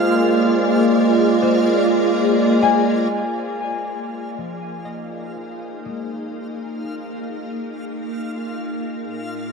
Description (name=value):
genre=ambient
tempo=61 BPM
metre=3/4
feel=straight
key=Ab lydian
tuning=A4 = 436 Hz
part: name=soft additive organ-like pad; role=sustained chords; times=0.0-9.5 s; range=Bb2 to D5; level=-19 LUFS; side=right 1 dB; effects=ensemble chorus, built-in reverb, shimmer reverb
part: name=pedal harmonium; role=drone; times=0.0-3.2 s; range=Ab3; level=-26 LUFS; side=left 1 dB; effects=none
part: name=backwards swelling texture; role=texture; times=0.0-9.5 s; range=F4 to F5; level=-29 LUFS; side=right 1 dB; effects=built-in reverb, shimmer reverb
part: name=concert harp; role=arpeggios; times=1.4-9.1 s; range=F3 to Ab5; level=-26 LUFS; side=left 6 dB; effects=tape echo, shimmer reverb
room=wet huge ambient reverb, RT60 8.7 s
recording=dark, warm production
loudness=-17 LUFS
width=side -5 dB against mid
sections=0.0-3.1 A section; 3.1-9.5 B section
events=fade-in on ambient pad 3.1-9.5; fade-in on harp 3.1-9.5; fade-in on synth texture 3.1-9.5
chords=0.0 Bb9; 3.1 Absus2